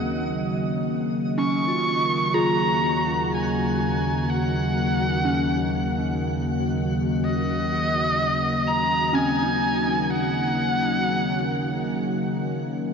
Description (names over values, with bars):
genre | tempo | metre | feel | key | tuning
ambient | 62 BPM | 3/4 | straight | Eb dorian | A4 = 444 Hz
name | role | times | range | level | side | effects
rich electric violin | melody | 0.0-12.0 s | Eb5 to Db6 | -26 LUFS | right 1 dB | tape echo
warm analog pad | sustained chords | 0.0-12.9 s | Db3 to Eb5 | -24 LUFS | left 1 dB | chorus
soft synth bell | arpeggios | 0.0-12.9 s | C4 to Ab4 | -30 LUFS | equal | chorus, phaser, tape echo
deep rumbling drone | bass | 0.0-12.9 s | Eb2 | -35 LUFS | right 1 dB | built-in reverb
twinkling granular texture | texture | 0.0-12.9 s | Gb4 to Gb6 | -37 LUFS | equal | built-in reverb
room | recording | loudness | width
wet cathedral reverb, RT60 6.5 s | in a vast, echoing space, cassette tape, nothing above 7.5 kHz | -21 LUFS | side -6 dB against mid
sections
0.0-12.9 A section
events
fade-out on synth drone 0.0-12.9; fade-out on synth texture 0.0-12.9; filter sweep on analog synth pad 0.0-12.9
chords
0.0 Ebm7